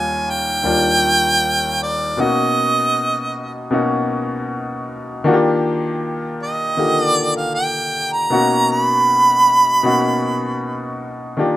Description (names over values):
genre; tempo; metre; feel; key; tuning
soul; 78 BPM; 4/4; straight; unclear; A4 = 444 Hz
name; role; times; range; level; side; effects
clear harmonica; melody; 0.0-11.0 s; D5 to B5; -16 LUFS; right 2 dB; none
warm grand piano; accompaniment; 0.0-11.6 s; Eb2 to G4; -19 LUFS; left 2 dB; plate reverb
room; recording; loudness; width
moderate small room reverb, RT60 0.5 s; rough home demo mix; -15 LUFS; side -14 dB against mid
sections
0.0-11.4 A section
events
none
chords
0.0 Ebmaj7; 2.2 Bmaj7; 5.3 Ebmaj7; 8.3 Bmaj7